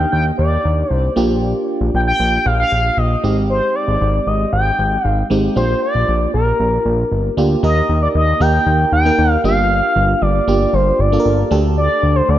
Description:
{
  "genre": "pop",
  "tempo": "116 BPM",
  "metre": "4/4",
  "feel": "straight",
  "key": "Bb mixolydian",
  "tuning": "A4 = 440 Hz",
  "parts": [
    { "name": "expressive synth lead", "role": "melody", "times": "0.0-12.4 s", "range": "Bb4 to G5", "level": "-17 LUFS", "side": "equal", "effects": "chorus, tape echo" },
    { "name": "FM electric piano", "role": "accompaniment", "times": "0.0-12.4 s", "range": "Ab3 to Bb4", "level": "-20 LUFS", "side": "right 2 dB", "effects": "chorus" },
    { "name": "fat analog bass", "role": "bass", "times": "0.0-12.4 s", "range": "G1 to Eb2", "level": "-17 LUFS", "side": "equal", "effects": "none" }
  ],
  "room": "light reverb",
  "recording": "none",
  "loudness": "-13 LUFS",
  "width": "side -12 dB against mid",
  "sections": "0.0-7.6 A section; 7.6-12.4 B section",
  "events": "none",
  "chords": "0.0 Ebmaj7; 1.2 Bb6; 3.2 Abmaj7; 5.6 Bb6; 7.6 Eb; 9.4 Gm7; 11.5 Dsus4"
}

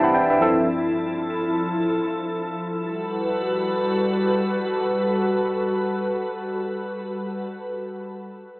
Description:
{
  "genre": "amapiano",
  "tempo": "free time",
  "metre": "none",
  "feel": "none",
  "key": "G major",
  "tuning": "A4 = 443 Hz",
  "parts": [
    { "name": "tine electric piano", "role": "accompaniment", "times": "0.0-0.7 s", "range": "G2 to B5", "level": "-18 LUFS", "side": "equal", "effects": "medium stereo tremolo" },
    { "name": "glassy FM pad", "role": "sustained chords", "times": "0.0-7.5 s", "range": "G2 to B4", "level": "-22 LUFS", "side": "equal", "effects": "ensemble chorus, built-in reverb" }
  ],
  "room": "moderate lush hall reverb, RT60 2.2 s",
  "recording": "AM radio sound",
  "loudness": "-21 LUFS",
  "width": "side -23 dB against mid",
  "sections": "0.0-2.8 A section; 2.8-7.0 B section",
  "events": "none",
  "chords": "0.4 Fmaj7; 2.8 Gmaj9"
}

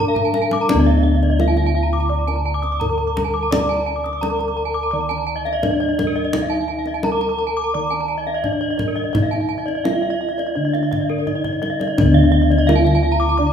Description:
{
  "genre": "Balinese gamelan",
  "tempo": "85 BPM",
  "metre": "4/4",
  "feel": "straight",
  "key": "D pelog",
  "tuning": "A4 = 440 Hz",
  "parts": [
    { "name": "gamelan-type bronze metallophone", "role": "melody", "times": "0.0-13.5 s", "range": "D4 to D5", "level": "-22 LUFS", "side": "equal", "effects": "none" },
    { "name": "gamelan-type bronze metallophone", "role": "accompaniment", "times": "0.0-0.7, 12.0-13.5 s", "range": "D3 to D4", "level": "-22 LUFS", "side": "left 2 dB", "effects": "none" },
    { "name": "gamelan-type bronze metallophone", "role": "arpeggios", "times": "0.0-13.5 s", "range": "Bb4-40c to Eb6", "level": "-24 LUFS", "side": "left 2 dB", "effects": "none" },
    { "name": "gamelan-type bossed gongs", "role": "bass", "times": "0.0-13.5 s", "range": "D2 to D5", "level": "-21 LUFS", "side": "left 1 dB", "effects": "none" },
    { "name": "gamelan-type bronze metallophone", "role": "arpeggios", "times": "0.2-13.4 s", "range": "Bb4-40c to D6", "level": "-26 LUFS", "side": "right 6 dB", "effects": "none" },
    { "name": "kendang", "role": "percussion", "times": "0.2-13.0 s", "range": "none", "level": "-25 LUFS", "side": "equal", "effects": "none" }
  ],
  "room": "wet recital hall reverb, RT60 1.5 s",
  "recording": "minimal, uncompressed stereo recording",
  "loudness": "-16 LUFS",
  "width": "side -8 dB against mid",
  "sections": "0.7-13.5 A section",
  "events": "drum fill 0.2-0.7, 11.3-12.0",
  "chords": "none"
}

